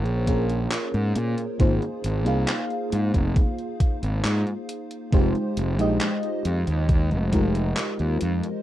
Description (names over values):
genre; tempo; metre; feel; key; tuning
vaporwave; 68 BPM; 4/4; straight; F minor; A4 = 441 Hz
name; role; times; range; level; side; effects
FM electric piano with soft pad layer; accompaniment; 0.0-8.6 s; Ab3 to F5; -27 LUFS; equal; wide subtle chorus, tape echo
fuzz fingered electric bass; bass; 0.0-8.4 s; F1 to Bb2; -24 LUFS; equal; overdrive, tube saturation
gated 80s digital drum machine; drums; 0.1-8.6 s; handclaps, hi-hat; -30 LUFS; equal; gated reverb, overdrive
electronic kick drum; drums; 0.3-7.5 s; none; -22 LUFS; equal; overdrive
room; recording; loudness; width
light reverb; rough home demo mix, cassette tape; -21 LUFS; side -13 dB against mid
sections
0.0-8.6 A section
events
none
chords
0.0 Bbm7; 1.6 Ab6; 5.1 Fm9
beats
0.72 | 1.60 2.48 3.36 4.25 | 5.13 6.01 6.89 7.77